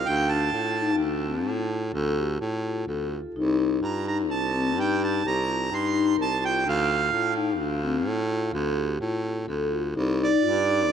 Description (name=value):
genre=contemporary instrumental, chamber music in an uneven meter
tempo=127 BPM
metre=7/4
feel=straight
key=unclear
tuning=A4 = 440 Hz
part: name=accordion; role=melody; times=0.0-10.9 s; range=D5 to C6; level=-27 LUFS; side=right 5 dB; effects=none
part: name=breathy baritone saxophone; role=bass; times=0.0-10.9 s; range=C2 to A2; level=-28 LUFS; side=right 1 dB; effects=none
part: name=vibraphone with soft mallets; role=arpeggios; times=0.1-10.9 s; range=C4 to Bb4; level=-27 LUFS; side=left 4 dB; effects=none
room=wet cathedral reverb, RT60 5.6 s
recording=in a vast, echoing space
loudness=-23 LUFS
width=side -8 dB against mid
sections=0.0-10.9 A section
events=none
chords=0.1 Dm; 3.4 Cm7; 6.7 Dm; 10.0 Cm